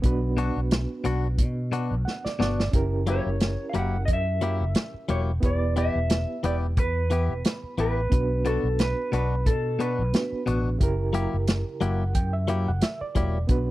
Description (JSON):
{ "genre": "straight-eighth soul blues", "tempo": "89 BPM", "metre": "4/4", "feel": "swing 55% on 16ths", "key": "B minor", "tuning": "A4 = 440 Hz", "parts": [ { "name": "overdriven reed electric piano", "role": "accompaniment", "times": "0.0-13.7 s", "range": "C#3 to G5", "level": "-32 LUFS", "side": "right 4 dB", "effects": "fast tremolo" }, { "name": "fingered electric bass", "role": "bass", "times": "0.0-13.7 s", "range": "E1 to B2", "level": "-26 LUFS", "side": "equal", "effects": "none" }, { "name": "warm soul drum kit", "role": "drums", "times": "0.0-13.7 s", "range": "hi-hat, kick drum, snare drum", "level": "-24 LUFS", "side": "equal", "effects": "none" }, { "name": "direct-recorded clean electric guitar", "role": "stabs", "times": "0.4-13.4 s", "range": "B2 to G4", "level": "-29 LUFS", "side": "left 4 dB", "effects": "none" }, { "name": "electric guitar through a small old amp", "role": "melody", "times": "3.1-10.4 s", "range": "A4 to F#5", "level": "-29 LUFS", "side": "equal", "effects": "none" } ], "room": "studio ambience", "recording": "none", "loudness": "-23 LUFS", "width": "side -16 dB against mid", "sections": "0.0-13.5 A section", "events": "reed electric piano fill 1.7-2.7, 11.5-13.5; drum fill 2.1-2.7", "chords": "0.0 Bm; 2.7 F#7b9; 5.4 Em; 8.1 Bm; 10.8 F#7b9" }